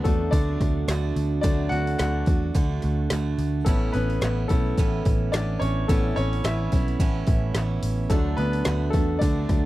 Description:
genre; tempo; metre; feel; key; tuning
piano-driven pop; 108 BPM; 4/4; swing 56% on 16ths; D major; A4 = 437 Hz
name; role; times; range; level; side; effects
clear baby grand piano; accompaniment; 0.0-9.7 s; F#3 to F#5; -29 LUFS; left 3 dB; none
picked steel-string acoustic guitar; riff; 0.0-9.7 s; A2 to F#4; -29 LUFS; right 6 dB; none
vintage muted picked electric bass; bass; 0.1-9.7 s; A1 to E2; -25 LUFS; equal; none
deep house drum kit; drums; 0.1-9.6 s; handclaps, hi-hat, kick drum, snare drum; -24 LUFS; equal; none
room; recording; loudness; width
little or no reverb; dry, close 1970s-style studio recording; -21 LUFS; side -16 dB against mid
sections
0.0-9.7 A section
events
grand piano solo 0.0-9.7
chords
0.0 D; 3.7 Aadd9; 8.1 D

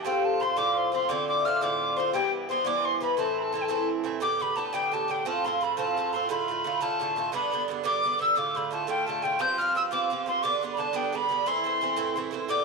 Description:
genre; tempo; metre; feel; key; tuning
celtic folk, Celtic jig; 116 BPM (dotted quarters); 6/8; straight; unclear; A4 = 440 Hz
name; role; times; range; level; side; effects
breathy mid whistle; melody; 0.0-12.6 s; G5 to G6; -27 LUFS; left 2 dB; tape echo
vibraphone with medium mallets; second line; 0.0-3.9, 12.5-12.6 s; G4 to F5; -29 LUFS; left 9 dB; none
Irish bouzouki; accompaniment; 0.0-12.6 s; G2 to G4; -29 LUFS; right 9 dB; none
room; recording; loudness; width
wet spring reverb, RT60 1.2 s, small room reverb; 1960s-style stereo with parts hard left and right; -24 LUFS; side -3 dB against mid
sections
0.0-4.2 A section; 4.2-12.5 B section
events
none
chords
0.1 F; 1.1 Dm7; 2.1 Em; 3.2 Am; 4.2 Gadd9; 5.3 F; 6.3 Dm; 7.3 G; 8.4 Dm; 9.4 Fsus2; 10.4 G; 11.5 Am

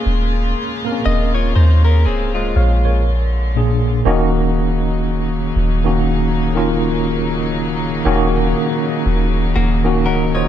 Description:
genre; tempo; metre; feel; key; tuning
contemporary R&B; 60 BPM; 4/4; swing 58% on 16ths; Eb minor; A4 = 440 Hz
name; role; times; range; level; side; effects
tine electric piano; accompaniment; 0.0-10.5 s; Bb2 to Gb5; -18 LUFS; right 1 dB; overdrive, fast stereo tremolo
warm studio string section; sustained chords; 0.0-10.5 s; Db3 to F4; -26 LUFS; left 3 dB; none
soft 808-style bass; bass; 0.1-10.5 s; Db1 to Eb2; -17 LUFS; equal; none
direct-recorded clean electric guitar; arpeggios; 1.1-3.0, 9.6-10.5 s; Ab3 to Eb5; -24 LUFS; left 4 dB; spring reverb
felt-muted upright piano; texture; 4.1-6.6 s; Eb5; -32 LUFS; left 5 dB; ping-pong delay
room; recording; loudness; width
little or no reverb; none; -14 LUFS; side -10 dB against mid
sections
0.0-4.1 A section; 4.1-10.5 B section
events
none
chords
0.0 Bbm7/Eb; 3.1 Bb7; 4.1 Ebm7

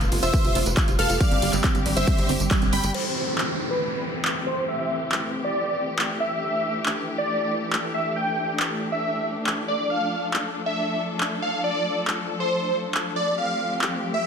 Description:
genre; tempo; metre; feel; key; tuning
uplifting trance; 138 BPM; 4/4; straight; C major; A4 = 440 Hz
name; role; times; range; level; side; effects
rich symphonic string section; sustained chords; 0.0-14.3 s; C3 to A4; -30 LUFS; left 2 dB; sidechain pumping, low-pass filter
wide unison pluck; arpeggios; 0.0-2.9 s; G3 to B4; -29 LUFS; right 5 dB; auto-pan, sidechain pumping, digital delay
tight sequencer bass; bass; 0.0-2.9 s; F1 to A1; -27 LUFS; equal; sidechain pumping
big-room dance drum kit; drums; 0.0-13.9 s; crash cymbal, handclaps, hi-hat, ride cymbal, tambourine; -27 LUFS; equal; overdrive, sidechain pumping on hats, sidechain pumping on perc, sidechain pumping on cymbals
supersaw chords; melody; 0.2-14.3 s; A4 to B5; -26 LUFS; right 1 dB; sidechain pumping, low-pass filter, digital delay
plucky unison lead; second line; 0.2-2.9 s; E6 to B6; -32 LUFS; left 1 dB; sidechain pumping, digital delay
electronic kick drum; drums; 0.3-2.6 s; none; -22 LUFS; equal; overdrive
downlifter and riser; sound effects; 2.9-6.4, 13.8-14.3 s; none; -32 LUFS; right 1 dB; none
room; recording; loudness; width
light reverb, digital ambience; none; -22 LUFS; side -6 dB against mid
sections
0.0-2.9 A section; 2.9-14.3 B section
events
drop 0.0-2.9; band accent 2.5; filter sweep on supersaw synth 2.9-14.3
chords
0.0 Fadd9; 1.2 Gsus4; 2.9 C6; 9.9 Dm; 13.4 Fadd9

